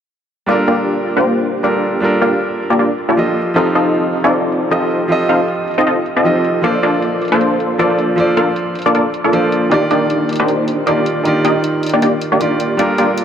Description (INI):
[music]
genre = future bass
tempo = 156 BPM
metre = 4/4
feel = swing 54% on 16ths, half-time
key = G minor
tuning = A4 = 440 Hz
[part]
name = warm grand piano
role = accompaniment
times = 0.5-13.2 s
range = Eb3 to Eb5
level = -17 LUFS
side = right 1 dB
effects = tape echo
[part]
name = supersaw stab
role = riff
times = 0.5-13.2 s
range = Bb3 to F5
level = -14 LUFS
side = equal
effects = low-pass filter, tape echo
[part]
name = electronic hi-hat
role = drums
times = 0.5-13.2 s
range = none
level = -34 LUFS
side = left 1 dB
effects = overdrive, low-pass filter on hats, small room ambience
[sound]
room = moderate huge ambient reverb, RT60 5.6 s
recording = none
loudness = -13 LUFS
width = side -8 dB against mid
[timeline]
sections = 0.5-13.2 A section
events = filter sweep on drum 0.5-13.2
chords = 0.5 Gm7; 3.4 F7; 6.6 Bbmaj7; 9.7 Ebmaj7